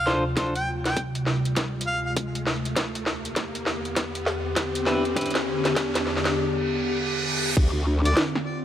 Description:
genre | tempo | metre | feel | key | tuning
glitch hop | 100 BPM | 4/4 | swing 62% on 16ths | D minor | A4 = 440 Hz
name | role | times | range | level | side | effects
clear harmonica | melody | 0.0-2.1, 8.1-8.2 s | D5 to G5 | -29 LUFS | equal | digital delay
warbly tape-like pad | sustained chords | 0.0-8.6 s | D2 to G4 | -28 LUFS | left 1 dB | chorus, built-in reverb, phaser, sidechain pumping
riser and reverse cymbal | sound effects | 0.0-7.6 s | none | -32 LUFS | right 1 dB | none
clean electric guitar | stabs | 0.1-0.5, 4.9-5.3 s | D4 to C5 | -28 LUFS | equal | sidechain pumping, low-pass filter, digital delay
drum and bass drum kit | drums | 0.1-8.4 s | crash cymbal, hi-hat, snare drum | -27 LUFS | equal | high-pass filter on hats, high-pass filter on snare, high-pass filter on cymbals, high-pass filter on room
electronic kick drum | drums | 0.4-7.7 s | none | -25 LUFS | equal | high-pass filter on kick, high-pass filter on room
growl bass | bass | 7.6-8.1 s | D2 | -22 LUFS | equal | chorus, tube saturation
room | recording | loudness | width
moderate lush hall reverb, RT60 1.9 s, digital ambience | vinyl crackle | -22 LUFS | side -11 dB against mid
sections
0.0-7.6 A section; 7.6-8.6 B section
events
build-up 0.0-7.6; drum fill 0.0-6.4; riser 0.0-6.4; filter sweep on clean electric guitar 0.0-7.6; filter sweep on ambient pad 0.0-7.6; reverse cymbal 6.4-7.6; drop 7.6-8.6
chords
0.0 Dm7; 2.8 Em7; 7.6 Dm7

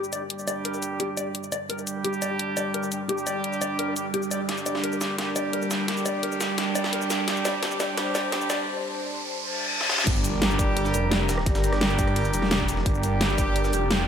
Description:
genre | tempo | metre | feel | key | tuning
dark technical drum and bass | 172 BPM | 4/4 | straight | G minor | A4 = 440 Hz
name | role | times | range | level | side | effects
dark analog pad | sustained chords | 0.0-14.1 s | G3 to Bb5 | -32 LUFS | right 1 dB | chorus, sidechain pumping
mellow electric guitar | arpeggios | 0.0-8.5 s | G4 to D5 | -31 LUFS | left 2 dB | sidechain pumping, ping-pong delay
warm brass ensemble | stabs | 0.0-14.1 s | G3 to G4 | -29 LUFS | right 2 dB | low-pass filter, ping-pong delay
dubstep drum kit | drums | 0.0-14.0 s | cabasa, crash cymbal, hi-hat, rim click, snare drum | -28 LUFS | equal | high-pass filter on hats, high-pass filter on toms, high-pass filter on perc, high-pass filter on snare, high-pass filter on cymbals, high-pass filter on room
riser, reverse cymbal and impact | sound effects | 1.6-11.5 s | none | -33 LUFS | left 1 dB | none
phased detuned saw bass | bass | 10.1-14.1 s | F1 to G1 | -26 LUFS | equal | phaser, overdrive, sidechain pumping
breakbeat sampler-style drum kit | drums | 10.1-14.0 s | hi-hat, snare drum | -38 LUFS | equal | none
electronic kick drum | drums | 10.1-13.5 s | none | -26 LUFS | equal | none
room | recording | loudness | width
moderate lush hall reverb, RT60 1.8 s | high-pass filter | -23 LUFS | side -8 dB against mid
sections
0.0-10.1 A section; 10.1-14.1 B section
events
build-up 0.0-10.1; filter sweep on analog synth pad 0.0-10.1; filter sweep 0.0-10.1; riser 1.6-10.1; drum fill 4.5-8.7, 9.8; reverse cymbal 9.4-10.1; drop 10.1-14.1; impact 10.1-11.5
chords
0.0 Gm

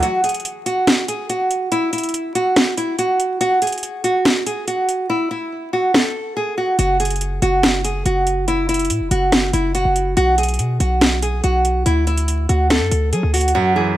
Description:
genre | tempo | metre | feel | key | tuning
hip hop, trap | 142 BPM | 4/4 | half-time | F# minor | A4 = 441 Hz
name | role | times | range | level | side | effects
nylon-string guitar | melody | 0.0-14.0 s | E4 to A4 | -18 LUFS | right 1 dB | none
clear concert grand piano | accompaniment | 0.0, 13.5-14.0 s | F#2 to E3 | -20 LUFS | right 2 dB | none
trap drum kit | drums | 0.0-13.5 s | hi-hat, snare drum | -18 LUFS | equal | overdrive
hard-hitting 808-style bass | bass | 6.8-13.5 s | F#1 to F#3 | -19 LUFS | equal | none
room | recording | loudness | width
studio reverb | vinyl crackle | -16 LUFS | side -14 dB against mid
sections
0.0-14.0 A section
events
break 0.0-6.8; hi-hats muted 5.1-6.8, 13.5-14.0; kick muted 13.5-14.0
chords
0.0 N.C.; 6.8 F#7(no3); 10.2 B5; 11.9 Dadd9

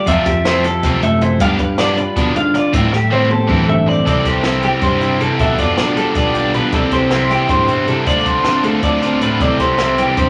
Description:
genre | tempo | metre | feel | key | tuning
math rock and midwest emo | 315 BPM (eighths) | 7/8 | straight | C major | A4 = 440 Hz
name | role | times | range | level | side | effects
twelve-string electric guitar | accompaniment | 0.0-10.3 s | A2 to D5 | -20 LUFS | equal | spring reverb
twelve-string electric guitar | arpeggios | 0.0-10.3 s | G4 to F5 | -20 LUFS | equal | none
overdriven electric guitar | riff | 0.1-10.3 s | B2 to G4 | -22 LUFS | equal | none
growling fingered electric bass | bass | 0.1-10.3 s | F1 to D3 | -26 LUFS | equal | overdrive
compact cocktail drum kit | drums | 0.1-10.3 s | hi-hat, kick drum, snare drum, toms | -24 LUFS | equal | none
room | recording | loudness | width
wet large studio reverb, RT60 0.8 s | none | -15 LUFS | mono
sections
0.0-4.1 A section; 4.1-10.3 B section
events
drum fill 2.9-4.1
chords
0.1 Fmaj9; 1.4 G7; 2.7 Am7; 4.1 C69; 5.4 G9; 6.7 C69; 8.1 Dm7; 9.4 C69

